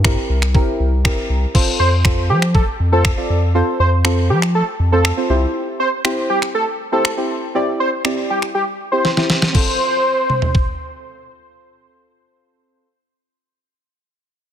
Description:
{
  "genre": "dance-pop",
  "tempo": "120 BPM",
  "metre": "4/4",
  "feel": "straight",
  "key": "F major",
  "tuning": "A4 = 441 Hz",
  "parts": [
    { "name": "deep mellow chord stab", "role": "accompaniment", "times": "0.0-12.9 s", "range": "C4 to D5", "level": "-21 LUFS", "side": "equal", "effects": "chorus, sidechain pumping" },
    { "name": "round analog bass", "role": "bass", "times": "0.0-5.5 s", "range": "C2 to F3", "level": "-16 LUFS", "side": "equal", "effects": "sidechain pumping" },
    { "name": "detuned 8-bit digital drum machine", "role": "drums", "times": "0.0-10.7 s", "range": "crash cymbal, finger snaps, kick drum, snare drum, toms", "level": "-18 LUFS", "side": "equal", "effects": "soft clipping on snare" },
    { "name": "wide unison lead", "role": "melody", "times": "1.8-11.0 s", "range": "G4 to C5", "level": "-20 LUFS", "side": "right 1 dB", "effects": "sidechain pumping, ping-pong delay" }
  ],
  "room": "light reverb, digital ambience",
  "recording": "dense, heavily limited modern master",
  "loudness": "-14 LUFS",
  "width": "side -9 dB against mid",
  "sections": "0.0-1.5 A section; 1.5-9.5 B section; 9.5-13.5 C section",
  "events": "drum fill 9.0-9.5",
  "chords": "0.0 C7; 1.5 F; 5.3 C; 9.5 F"
}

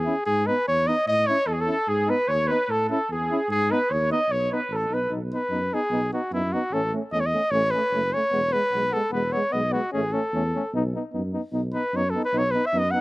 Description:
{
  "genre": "balkan folk",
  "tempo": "149 BPM",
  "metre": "2/4",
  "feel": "straight",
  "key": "B mixolydian",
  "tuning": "A4 = 440 Hz",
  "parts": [
    { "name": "warm flugelhorn", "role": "melody", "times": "0.0-13.0 s", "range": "E4 to F#5", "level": "-24 LUFS", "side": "equal", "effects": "none" },
    { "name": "dark tuba", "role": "bass", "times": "0.0-13.0 s", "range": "E1 to A2", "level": "-29 LUFS", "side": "equal", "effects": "none" },
    { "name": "mellow euphonium", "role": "accompaniment", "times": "0.1-13.0 s", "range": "G#3 to C#4", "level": "-31 LUFS", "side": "right 3 dB", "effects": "none" },
    { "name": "warm trombone", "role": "accompaniment", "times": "0.1-13.0 s", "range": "B3 to E4", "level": "-32 LUFS", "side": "left 3 dB", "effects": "slapback echo" },
    { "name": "warm trumpet", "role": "second line", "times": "1.1-5.1 s", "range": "G#4 to D#5", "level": "-29 LUFS", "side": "right 3 dB", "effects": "slapback echo" }
  ],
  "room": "little or no reverb",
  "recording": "recorded outdoors, with no room sound",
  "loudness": "-22 LUFS",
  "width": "side -20 dB against mid",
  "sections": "0.0-5.1 A section; 5.1-13.0 B section",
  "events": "flugelhorn solo 5.1-13.0",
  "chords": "0.3 G#m; 1.1 A; 1.9 G#m; 2.7 A; 3.5 G#m; 4.3 B; 6.7 A; 8.3 E; 9.9 A; 10.7 B"
}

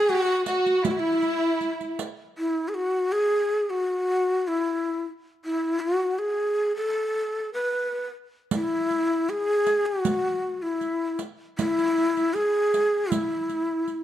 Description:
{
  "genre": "Arabic maqam ensemble",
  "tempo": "78 BPM",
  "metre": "4/4",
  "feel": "straight",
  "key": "E maqam ajam",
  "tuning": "A4 = 440 Hz",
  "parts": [
    { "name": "breathy ney", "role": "melody", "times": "0.0-14.0 s", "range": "E4 to B4", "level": "-23 LUFS", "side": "left 1 dB", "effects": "none" },
    { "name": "warm studio violin section", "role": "second line", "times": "0.0-1.9 s", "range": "E4 to F#4", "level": "-26 LUFS", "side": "right 2 dB", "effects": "none" },
    { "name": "riq", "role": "percussion", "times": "0.1-2.2, 8.5-14.0 s", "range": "none", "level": "-31 LUFS", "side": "right 4 dB", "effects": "none" }
  ],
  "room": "light reverb",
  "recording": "dark, warm production",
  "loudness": "-23 LUFS",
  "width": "side -12 dB against mid",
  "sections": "0.0-2.4 A section; 2.4-14.0 B section",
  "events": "none",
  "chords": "none"
}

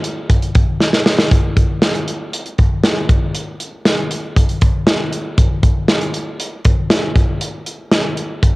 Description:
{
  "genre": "pop",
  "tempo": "118 BPM",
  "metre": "4/4",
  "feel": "straight",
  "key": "none",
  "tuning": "none",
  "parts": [
    { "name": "modern studio drum kit", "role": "drums", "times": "0.0-8.5 s", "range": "hi-hat, kick drum, snare drum", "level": "-14 LUFS", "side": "equal", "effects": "none" }
  ],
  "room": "moderate spring reverb, RT60 2.8 s",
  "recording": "home recording on cassette",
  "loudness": "-14 LUFS",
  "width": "side -22 dB against mid",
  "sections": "0.0-1.3 A section; 1.3-8.6 B section",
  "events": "drum fill 0.8-1.3",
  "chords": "none"
}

